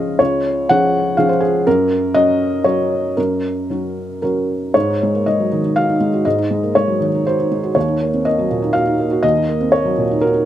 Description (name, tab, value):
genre	neoclassical minimalist piano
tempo	121 BPM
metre	3/4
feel	rubato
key	unclear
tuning	A4 = 441 Hz
part	felt-muted upright piano	solo	0.0-10.5 s	Db2 to Gb5	-14 LUFS	equal	slapback echo
room	little or no reverb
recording	recorded outdoors, with no room sound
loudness	-14 LUFS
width	side -12 dB against mid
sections	0.0-4.7 A section; 4.7-10.5 B section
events	none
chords	0.0 Db; 1.7 Gb; 4.7 Ab7sus4; 7.8 Ebm7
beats	| 0.19 0.68 1.17 | 1.66 2.14 2.65 | 3.17 3.70 4.22 | 4.75 5.25 5.75 | 6.25 6.75 7.26 | 7.76 8.25 8.74 | 9.23 9.72 10.21